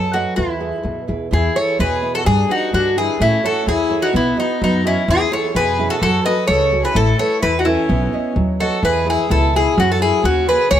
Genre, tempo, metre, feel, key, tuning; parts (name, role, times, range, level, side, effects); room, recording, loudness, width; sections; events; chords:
greek folk, Greek bouzouki band; 128 BPM; 2/4; straight; E major; A4 = 440 Hz
Greek bouzouki; melody; 0.0-10.8 s; D#4 to D#5; -18 LUFS; equal
nylon-string guitar; accompaniment; 0.0-10.8 s; B2 to D#5; -22 LUFS; right 3 dB
upright bass; bass; 0.0-10.8 s; A1 to A2; -20 LUFS; equal
warm violin; second line; 1.3-10.8 s; B3 to B4; -23 LUFS; left 4 dB
moderate plate reverb, RT60 2.8 s; -15 LUFS; side -10 dB against mid
0.0-1.3 A section; 1.3-8.8 B section; 8.8-10.8 A section
0.4 E; 2.3 G; 3.2 A; 4.1 B; 5.1 E6; 6.0 F#m; 7.0 Asus2; 7.9 Badd9; 8.8 E; 9.8 F#